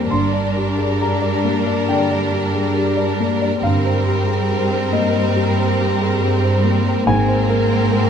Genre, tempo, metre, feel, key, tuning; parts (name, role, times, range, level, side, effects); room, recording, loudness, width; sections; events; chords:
cinematic, emotional film score for orchestra; 69 BPM; 4/4; rubato; A4 = 438 Hz
rich studio violin section; melody; 0.0-8.1 s; Bb4; -26 LUFS; equal
rich studio violin section; second line; 0.0-8.1 s; C4 to D4; -22 LUFS; left 3 dB
warm baby grand piano; accompaniment; 0.0-8.1 s; Eb2 to C6; -21 LUFS; left 3 dB
warm studio viola section; accompaniment; 0.0-8.1 s; G3 to Bb3; -25 LUFS; right 3 dB
warm studio cello section; bass; 0.0-8.1 s; G2 to Ab2; -20 LUFS; right 3 dB
rich studio double bass section; bass; 0.1-7.9 s; G1 to Ab1; -24 LUFS; right 5 dB
light reverb; close, detailed microphones; -15 LUFS; side -7 dB against mid
0.0-8.1 A section
0.1 Gm; 3.6 Cm7/G; 7.1 Abadd9